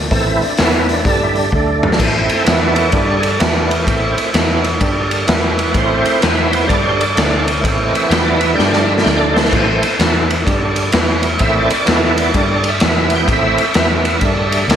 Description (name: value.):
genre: blues rock power trio and southern rock.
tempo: 128 BPM.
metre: 4/4.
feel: swing 64% on 8ths.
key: A minor.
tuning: A4 = 440 Hz.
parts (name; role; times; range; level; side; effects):
vintage muted picked electric bass; bass; 0.0-14.8 s; A1 to G2; -20 LUFS; left 1 dB; none.
overdriven tonewheel organ; sustained chords; 0.1-14.8 s; D3 to G5; -16 LUFS; right 2 dB; slow rotary speaker, chorus vibrato.
raw garage drum kit; drums; 0.1-14.8 s; crash cymbal, hi-hat, kick drum, ride cymbal, snare drum, toms; -15 LUFS; equal; none.
room: moderate lush hall reverb, RT60 1.6 s, studio ambience.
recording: big arena sound.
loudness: -12 LUFS.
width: side -9 dB against mid.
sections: 0.0-2.0 A section; 2.0-14.8 A section.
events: tonewheel organ solo 0.0-14.8; drum fill 1.5-2.0, 8.6-9.5.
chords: 0.1 Am; 0.6 E5; 1.1 G5; 1.5 D5; 2.0 Am; 2.5 E5; 2.9 G5; 3.4 E5; 3.9 Am; 4.3 E5; 4.8 G5; 5.3 E5; 5.8 Am; 6.2 E5; 6.7 G5; 7.2 D5; 7.6 Am; 8.1 E5; 8.6 G5; 9.1 D5; 9.5 Am; 10.0 E5; 10.5 G5; 10.9 E5; 11.4 Am; 11.9 E5; 12.3 G5; 12.8 E5; 13.3 Am; 13.8 E5; 14.2 G5.